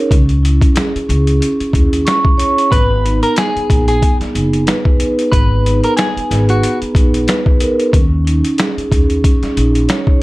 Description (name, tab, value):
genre	hip hop, boom-bap hip-hop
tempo	92 BPM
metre	4/4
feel	swing 56% on 16ths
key	G# minor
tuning	A4 = 440 Hz
part	vibraphone with soft mallets	accompaniment	0.0-10.2 s	B3 to C#6	-16 LUFS	right 1 dB	cassette tape
part	upright bass	bass	0.1-9.9 s	F#1 to D#2	-15 LUFS	equal	none
part	trip hop sampler-style drum kit	drums	0.1-10.2 s	hi-hat, kick drum, snare drum	-14 LUFS	equal	overdrive
part	clean electric guitar	melody	2.7-6.8 s	F#4 to B4	-19 LUFS	left 1 dB	tape echo
room	light reverb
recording	none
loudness	-11 LUFS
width	side -20 dB against mid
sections	0.0-10.2 A section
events	none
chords	0.1 C#m; 2.7 G#madd9; 7.9 D#7sus4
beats	| 0.11 0.76 1.41 2.06 | 2.71 3.37 4.02 4.67 | 5.32 5.98 6.63 7.28 | 7.93 8.58 9.24 9.89